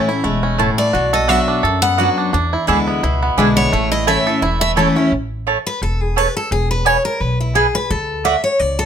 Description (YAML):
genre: bluegrass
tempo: 172 BPM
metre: 4/4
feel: swing 55% on 8ths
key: A major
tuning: A4 = 439 Hz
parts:
  - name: picked steel-string acoustic guitar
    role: accompaniment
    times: 0.0-8.9 s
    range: E2 to E5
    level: -18 LUFS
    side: left 2 dB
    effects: none
  - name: bluegrass banjo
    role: arpeggios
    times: 0.0-5.1 s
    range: A3 to A4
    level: -20 LUFS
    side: right 3 dB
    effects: none
  - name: upright bass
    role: bass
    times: 0.2-8.9 s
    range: E1 to F#2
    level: -21 LUFS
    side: equal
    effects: none
  - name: mandolin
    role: stabs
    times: 0.6-8.4 s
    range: A3 to B5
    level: -17 LUFS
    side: right 6 dB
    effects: none
  - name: picked steel-string acoustic guitar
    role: melody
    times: 0.8-4.7 s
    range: C#5 to F#5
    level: -18 LUFS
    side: equal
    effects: none
room: light reverb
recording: close, detailed microphones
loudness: -14 LUFS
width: side -8 dB against mid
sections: 0.0-5.1 A section; 5.1-8.9 A section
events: steel-string acoustic guitar solo 0.0-5.1, 5.1-8.9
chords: 0.0 A; 0.9 Bm; 2.3 E7; 3.7 A; 6.5 E; 7.9 D